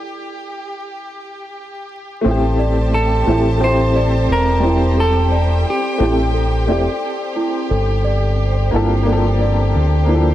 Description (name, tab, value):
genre	trip hop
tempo	88 BPM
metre	4/4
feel	swing 59% on 16ths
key	A phrygian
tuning	A4 = 445 Hz
part	clear studio violin section	sustained chords	0.0-10.3 s	G4 to A5	-26 LUFS	equal	none
part	celesta	arpeggios	0.0-10.3 s	E4 to D5	-24 LUFS	right 2 dB	ping-pong delay
part	warm upright piano	accompaniment	2.2-10.3 s	F3 to A4	-20 LUFS	left 1 dB	tremolo, vintage 12-bit sampler grit, tape echo
part	backwards swelling texture	texture	4.2-10.3 s	C4 to C5	-28 LUFS	equal	built-in reverb
part	deep dub fingered electric bass	bass	2.3-10.3 s	E1 to D2	-16 LUFS	equal	none
part	clean electric guitar	melody	2.9-7.0 s	G4 to C5	-22 LUFS	equal	tape echo
room	studio reverb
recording	vinyl crackle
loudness	-14 LUFS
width	side -13 dB against mid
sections	0.0-2.3 A section; 2.3-10.3 B section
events	break 0.0-2.3; filter sweep on celesta 0.0-2.3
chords	0.0 G5; 2.3 Am7; 7.7 Gm7